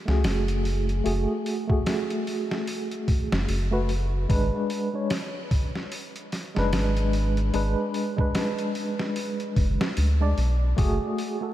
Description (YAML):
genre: trip hop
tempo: 74 BPM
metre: 4/4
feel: swing 59% on 16ths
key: unclear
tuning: A4 = 438 Hz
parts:
  - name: tine electric piano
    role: accompaniment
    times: 0.1-11.5 s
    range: G#3 to D5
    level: -28 LUFS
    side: equal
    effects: slow stereo tremolo, low-pass filter, tape echo
  - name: round analog bass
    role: bass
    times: 0.1-11.0 s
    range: F#1 to D2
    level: -24 LUFS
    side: equal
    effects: none
  - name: trip hop sampler-style drum kit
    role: drums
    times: 0.1-11.4 s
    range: hi-hat, kick drum, snare drum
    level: -28 LUFS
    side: equal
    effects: overdrive
room: light reverb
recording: vinyl crackle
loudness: -23 LUFS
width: side -13 dB against mid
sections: 0.0-11.5 A section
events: filter sweep on tine electric piano 0.0-11.5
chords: 0.0 F#madd9; 4.3 G#dim; 10.8 F#madd9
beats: 0.24 | 1.05 1.86 2.67 3.48 | 4.29 5.11 5.92 6.73 | 7.54 8.35 9.16 9.97 | 10.78